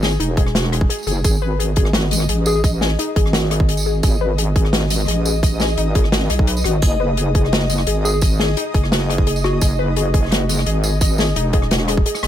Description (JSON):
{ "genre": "half-time drum and bass", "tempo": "172 BPM", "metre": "4/4", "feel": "half-time", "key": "unclear", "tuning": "A4 = 440 Hz", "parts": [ { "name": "warbly dusty pluck", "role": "arpeggios", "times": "0.0-12.3 s", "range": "G#3 to D#5", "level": "-25 LUFS", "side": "left 4 dB", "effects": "chorus, cassette tape, ping-pong delay" }, { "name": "deep soft wobble bass", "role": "bass", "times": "0.0-12.3 s", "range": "E1 to B1", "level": "-19 LUFS", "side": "right 1 dB", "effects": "chorus" }, { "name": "open jazz drum kit", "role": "drums", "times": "0.0-12.3 s", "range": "hi-hat, rim click, snare drum, tambourine", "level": "-22 LUFS", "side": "left 1 dB", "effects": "none" }, { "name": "electronic kick drum", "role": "drums", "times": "0.4-12.0 s", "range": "none", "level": "-16 LUFS", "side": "right 1 dB", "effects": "none" }, { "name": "flickering grainy texture", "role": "texture", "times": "1.7-12.3 s", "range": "D#5", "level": "-27 LUFS", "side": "left 2 dB", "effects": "built-in reverb" }, { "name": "soft struck synth lead", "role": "melody", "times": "2.5-2.6, 8.0-9.6 s", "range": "F#4 to G#4", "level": "-27 LUFS", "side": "left 1 dB", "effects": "none" } ], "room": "small room ambience", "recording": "none", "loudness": "-15 LUFS", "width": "side -11 dB against mid", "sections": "0.0-12.3 A section", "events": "none", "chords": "0.0 Emaj9; 1.2 G#m7; 6.8 Emaj9", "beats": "0.20 0.55 0.90 | 1.25 1.59 1.94 2.29 | 2.64 2.99 3.34 3.69 | 4.04 4.38 4.73 5.08 | 5.43 5.78 6.13 6.48 | 6.83 7.17 7.52 7.87 | 8.22 8.57 8.92 9.27 | 9.62 9.96 10.31 10.66 | 11.01 11.36 11.71 12.06" }